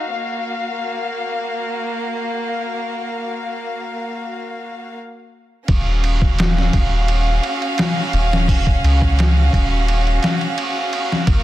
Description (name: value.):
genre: trip hop.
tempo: 86 BPM.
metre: 4/4.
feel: straight.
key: Eb minor.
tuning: A4 = 439 Hz.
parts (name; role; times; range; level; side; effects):
warm chamber violin section; sustained chords; 0.0-11.4 s; Bb3 to F5; -22 LUFS; equal; low-pass filter.
soft dub sub bass; bass; 5.7-11.4 s; Eb1 to Db2; -16 LUFS; equal; none.
trip hop sampler-style drum kit; drums; 5.7-11.4 s; hi-hat, kick drum, ride cymbal, snare drum; -19 LUFS; equal; overdrive.
room: little or no reverb.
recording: dense, heavily limited modern master.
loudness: -17 LUFS.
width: side -14 dB against mid.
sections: 0.0-5.7 A section; 5.7-11.4 B section.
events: none.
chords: 0.1 Gbmaj7; 5.7 Ebm9.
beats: | 0.11 0.81 1.50 2.20 | 2.90 3.60 4.29 4.99 | 5.69 6.39 7.09 7.78 | 8.48 9.18 9.88 10.57 | 11.27.